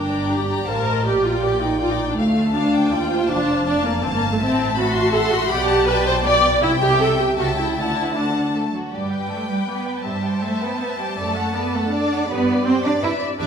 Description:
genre	quick classical-period movement for string orchestra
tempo	161 BPM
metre	3/4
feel	straight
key	G minor, G major from 4.4 s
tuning	A4 = 440 Hz
part	rich chamber violin section	melody	0.0-13.5 s	D5 to C6	-28 LUFS	left 4 dB	none
part	rich chamber violin section	second line	0.0-13.5 s	F#4 to Bb5	-27 LUFS	left 3 dB	none
part	rich symphonic viola section	accompaniment	0.0-13.5 s	A3 to G5	-20 LUFS	right 1 dB	none
part	rich chamber double bass section	bass	0.0-13.5 s	F1 to G2	-28 LUFS	right 2 dB	none
part	warm chamber cello section	bass	0.0-13.5 s	D2 to E4	-25 LUFS	right 2 dB	none
room	wet recital hall reverb, RT60 1.4 s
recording	recorded in a church or concert hall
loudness	-17 LUFS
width	side -7 dB against mid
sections	0.0-8.9 A section; 8.9-13.5 B section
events	none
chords	0.0 Gm; 1.1 Gm/Bb; 2.2 Dm; 3.3 Dm/F; 4.4 Am6; 5.5 G/B; 6.6 C; 7.4 A7/C#; 7.8 D; 8.9 G; 10.1 Am7/G; 11.2 D/F#; 12.3 G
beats	0.32 0.69 | 1.06 1.44 1.81 | 2.18 2.55 2.92 | 3.29 3.66 4.03 | 4.40 4.77 5.14 | 5.51 5.88 6.25 | 6.63 7.01 7.39 | 7.77 8.16 8.54 | 8.93 9.31 9.68 | 10.06 10.43 10.80 | 11.18 11.55 11.92 | 12.29 12.66 13.03 | 13.40

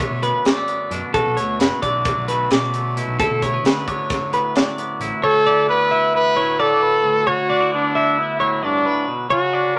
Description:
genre	math rock and midwest emo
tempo	264 BPM (eighths)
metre	9/8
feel	straight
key	D major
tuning	A4 = 435 Hz
part	twangy electric guitar	accompaniment	0.0-9.8 s	D2 to F#4	-28 LUFS	equal	none
part	twelve-string electric guitar	arpeggios	0.0-9.8 s	A4 to E5	-23 LUFS	equal	none
part	crisp fusion drum kit	drums	0.0-5.1 s	hi-hat, kick drum, snare drum	-24 LUFS	equal	none
part	fuzz fingered electric bass	bass	0.1-5.1 s	F#1 to D3	-30 LUFS	equal	overdrive
part	clear trumpet	melody	5.2-9.8 s	D4 to B4	-20 LUFS	equal	none
room	moderate studio reverb, RT60 0.5 s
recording	none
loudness	-19 LUFS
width	mono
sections	0.0-5.2 A section; 5.2-9.8 B section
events	none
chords	0.0 Dmaj7; 1.1 Bm7/F#; 3.2 D69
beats	0.00 0.23 0.46 0.68 0.91 | 1.14 1.37 1.59 1.82 2.05 2.28 2.51 2.73 2.96 | 3.19 3.42 3.65 3.87 4.10 4.33 4.55 4.78 5.01 | 5.23 5.46 5.69 5.91 6.14 6.37 6.59 6.82 7.04 | 7.27 7.50 7.72 7.95 8.18 8.40 8.63 8.85 9.08 | 9.30 9.53 9.75

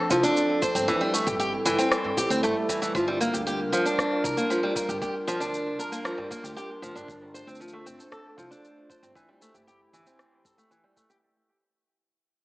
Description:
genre	folktronica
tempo	116 BPM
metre	4/4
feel	straight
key	unclear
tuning	A4 = 440 Hz
part	warbly tape-like pad	sustained chords	0.0-11.2 s	F3 to C5	-31 LUFS	equal	chorus, built-in reverb
part	picked steel-string acoustic guitar	arpeggios	0.1-11.2 s	E3 to C5	-26 LUFS	equal	low-pass filter, tape echo
part	upright bass	bass	0.1-10.5 s	F1 to G2	-38 LUFS	equal	none
part	electronic kick drum	drums	0.1-11.1 s	none	-38 LUFS	equal	none
part	organic electronic drum kit	drums	0.1-11.2 s	rim click, shaker, toms	-32 LUFS	equal	none
room	wet plate reverb, RT60 2.0 s, digital ambience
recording	dreamy mix soaked in reverb, small speaker sound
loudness	-23 LUFS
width	side -19 dB against mid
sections	0.0-11.2 A section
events	fade-out 0.0-11.2; filter sweep on steel-string acoustic guitar 0.0-11.2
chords	0.0 F6; 0.9 Am7/G; 2.9 Gm7; 7.1 F6/G; 9.2 Am7/G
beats	0.36 | 0.88 1.40 1.91 2.43 | 2.95 3.46 3.98 4.50 | 5.01 5.53 6.05 6.57 | 7.08 7.60 8.12 8.64 | 9.15 9.67 10.19 10.71

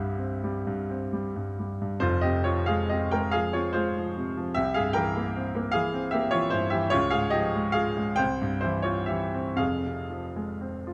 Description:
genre	classical, romantic nocturne for solo piano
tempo	39-52 BPM (dotted quarters)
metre	6/8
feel	rubato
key	F minor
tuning	A4 = 441 Hz
part	clear grand piano	solo	0.0-10.9 s	F1 to G5	-28 LUFS	equal	none
room	moderate recital hall reverb, RT60 1.5 s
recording	close, detailed microphones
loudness	-28 LUFS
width	mono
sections	0.0-10.9 A section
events	none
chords	0.0 C; 2.0 Fm; 4.6 C7; 6.9 Db; 8.2 C; 9.6 Fm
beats	0.66 | 2.02 3.34 | 4.57 5.74 | 6.93 8.20 | 9.60

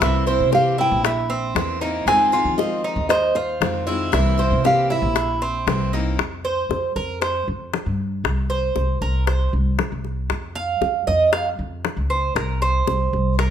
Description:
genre	latin, Cuban son and guajira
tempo	117 BPM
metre	4/4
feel	straight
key	F minor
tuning	A4 = 440 Hz
part	nylon-string guitar	melody	0.0-5.6 s	C5 to Ab5	-20 LUFS	right 1 dB	none
part	picked steel-string acoustic guitar	accompaniment	0.0-6.2 s	C3 to F4	-28 LUFS	left 5 dB	none
part	Cuban tres	arpeggios	0.0-13.5 s	C4 to F5	-23 LUFS	right 4 dB	none
part	upright bass	bass	0.0-13.5 s	Bb1 to F3	-23 LUFS	equal	none
part	bongos	percussion	0.0-13.5 s	none	-26 LUFS	left 8 dB	none
room	moderate large studio reverb, RT60 1.1 s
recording	minimal, uncompressed stereo recording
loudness	-18 LUFS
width	side -9 dB against mid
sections	0.0-6.2 A section; 6.2-13.5 B section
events	Cuban tres solo 6.2-13.5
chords	0.0 C7; 2.1 Fm7; 4.1 C7; 6.2 F5; 8.2 Bbsus2/C; 10.3 Dbmaj9; 12.4 C7(no3)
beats	| 0.01 0.53 1.04 1.56 | 2.07 2.59 3.10 3.62 | 4.13 4.64 5.16 5.67 | 6.19 6.70 7.22 7.73 | 8.25 8.76 9.28 9.79 | 10.30 10.82 11.33 11.85 | 12.36 12.88 13.39

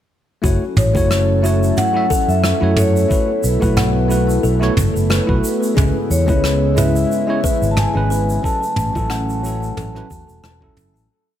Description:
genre	sunset chillout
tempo	90 BPM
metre	4/4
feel	swing 55% on 16ths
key	A major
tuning	A4 = 440 Hz
part	bell-like tine electric piano	accompaniment	0.4-11.1 s	F#3 to E5	-23 LUFS	moving between left 2 dB and right 4 dB	auto-pan, tape echo
part	airy breathy pad	sustained chords	0.4-11.1 s	C#3 to A4	-24 LUFS	right 1 dB	chorus
part	kalimba	arpeggios	0.4-10.8 s	F#4 to A5	-26 LUFS	left 1 dB	tape echo
part	fingered electric bass	bass	0.4-11.1 s	E1 to F#2	-18 LUFS	equal	none
part	electronic kick drum	drums	0.4-10.7 s	none	-20 LUFS	equal	none
part	soft brush drum kit	drums	0.4-11.1 s	rim click, shaker, toms	-22 LUFS	equal	none
part	vibraphone with soft mallets	melody	0.8-10.4 s	B4 to A5	-22 LUFS	left 2 dB	dub echo
part	bongos	percussion	0.9-10.6 s	none	-30 LUFS	right 1 dB	none
room	light reverb, small room ambience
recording	echo-heavy mix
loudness	-14 LUFS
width	side -11 dB against mid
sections	0.4-11.1 groove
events	fade-out 7.5-11.1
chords	0.4 F#m7; 3.1 B7sus4; 5.8 C#m7; 8.4 A6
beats	| 0.44 1.10 1.77 2.44 | 3.10 3.77 4.44 5.11 | 5.77 6.44 7.11 7.77 | 8.44 9.11 9.77 10.44

